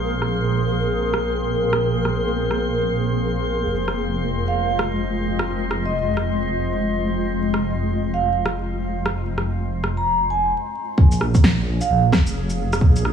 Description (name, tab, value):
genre	future garage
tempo	131 BPM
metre	4/4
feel	swing 61% on 16ths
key	unclear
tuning	A4 = 444 Hz
part	granular cloud pad	sustained chords	0.0-13.1 s	Ab3 to Eb5	-25 LUFS	left 1 dB	built-in reverb, sidechain pumping
part	dark detuned saw bass	bass	0.0-13.1 s	F1 to Bb1	-23 LUFS	right 1 dB	sidechain pumping
part	drifting glass-harmonics texture	texture	0.0-10.5 s	C4 to C6	-31 LUFS	left 3 dB	chorus, built-in reverb
part	electronic rim click, shaker and snare drum	drums	0.2-13.1 s	none	-24 LUFS	equal	low-pass filter on perc, small room ambience, low-pass filter on snare
part	vibraphone with medium mallets	melody	4.5-12.0 s	Eb5 to Bb5	-24 LUFS	right 3 dB	tape echo
part	electronic kick drum	drums	11.0-12.9 s	none	-15 LUFS	equal	small room ambience
room	moderate lush hall reverb, RT60 1.8 s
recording	vinyl crackle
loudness	-18 LUFS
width	side -8 dB against mid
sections	0.0-11.0 A section; 11.0-13.1 B section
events	stop 10.5-11.0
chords	0.0 Abadd9/Bb; 3.6 Fm7; 11.0 Bbm7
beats	0.44 0.90 1.36 | 1.82 2.28 2.73 3.19 | 3.65 4.11 4.57 5.02 | 5.48 5.94 6.40 6.86 | 7.31 7.77 8.23 8.69 | 9.15 9.60 10.06 10.52 | 10.98 11.44 11.89 12.35 | 12.81